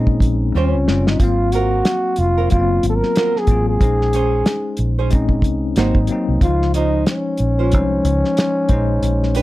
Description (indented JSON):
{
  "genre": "R&B, neo-soul",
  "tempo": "92 BPM",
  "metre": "4/4",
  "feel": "swing 59% on 16ths",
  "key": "Db major",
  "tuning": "A4 = 440 Hz",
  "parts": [
    { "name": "bell-like tine electric piano", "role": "accompaniment", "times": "0.0-9.4 s", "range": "Eb3 to F5", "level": "-22 LUFS", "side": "left 4 dB", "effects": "medium stereo tremolo" },
    { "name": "vintage muted fingered electric bass", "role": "bass", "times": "0.0-9.4 s", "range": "F1 to Bb2", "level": "-18 LUFS", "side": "equal", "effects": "none" },
    { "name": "cloth-damped thuddy drum kit", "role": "drums", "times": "0.1-9.4 s", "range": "hi-hat, kick drum, snare drum", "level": "-18 LUFS", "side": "equal", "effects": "none" },
    { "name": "growling trombone", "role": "melody", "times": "0.6-9.4 s", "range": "Db4 to Bb4", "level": "-19 LUFS", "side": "equal", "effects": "none" },
    { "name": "nylon-string guitar", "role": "second line", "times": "0.6-9.4 s", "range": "Gb3 to C5", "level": "-23 LUFS", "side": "right 8 dB", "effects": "none" }
  ],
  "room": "little or no reverb",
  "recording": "none",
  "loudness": "-14 LUFS",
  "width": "side -16 dB against mid",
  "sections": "0.0-9.4 A section",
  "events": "drum fill 0.5-1.2",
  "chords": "0.0 Bbm11; 0.5 Eb13; 1.2 Ab13; 3.8 Bbm11; 5.8 Ab9; 6.4 Dbmaj7; 8.7 Bbm11",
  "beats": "0.54 | 1.20 1.85 2.50 3.15 | 3.80 4.46 5.11 5.76 | 6.41 7.06 7.72 8.37 | 9.02"
}